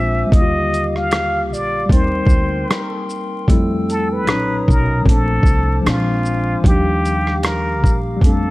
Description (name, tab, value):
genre	lo-fi hip hop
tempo	76 BPM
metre	4/4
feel	swing 57% on 16ths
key	unclear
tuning	A4 = 440 Hz
part	trumpet with plunger mute	melody	0.0-8.5 s	F4 to F5	-21 LUFS	equal	low-pass filter
part	mellow tine electric piano	accompaniment	0.0-8.5 s	A#2 to F4	-22 LUFS	left 2 dB	medium stereo tremolo, low-pass filter
part	pipe organ, stopped flute	sustained chords	0.0-8.5 s	G4 to E6	-27 LUFS	equal	low-pass filter
part	upright bass	bass	0.0-8.5 s	Bb1 to F2	-21 LUFS	equal	none
part	dusty soul sampler-style drum kit	drums	0.3-8.4 s	hi-hat, kick drum, rim click, shaker	-16 LUFS	equal	none
part	finger snap	percussion	1.1-7.6 s	none	-35 LUFS	right 6 dB	none
room	small room reverb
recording	vinyl crackle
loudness	-14 LUFS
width	side -19 dB against mid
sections	0.0-8.5 A section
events	none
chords	0.3 Ebmaj9; 1.9 Cm9/D; 3.5 Fmaj9; 4.3 Bmaj9; 5.1 Bbmaj9; 5.9 Bb9; 6.6 Ebmaj9